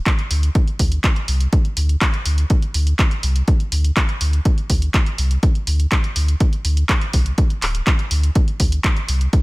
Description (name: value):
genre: acid house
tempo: 123 BPM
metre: 4/4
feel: straight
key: unclear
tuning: A4 = 440 Hz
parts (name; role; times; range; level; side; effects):
- electronic kick drum; drums; 0.1-9.4 s; none; -16 LUFS; equal; small room reverb
- punchy analog drum machine; drums; 0.1-9.4 s; handclaps, hi-hat; -23 LUFS; equal; small room reverb
- warm sub bass; bass; 0.3-9.3 s; D1 to D2; -17 LUFS; equal; tube saturation, sidechain pumping
room: little or no reverb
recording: none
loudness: -16 LUFS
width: side -23 dB against mid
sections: 0.0-9.4 A section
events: none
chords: none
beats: 0.06 | 0.55 1.04 1.53 2.01 | 2.50 2.99 3.48 3.96 | 4.45 4.94 5.43 5.92 | 6.40 6.89 7.38 7.87 | 8.36 8.84 9.33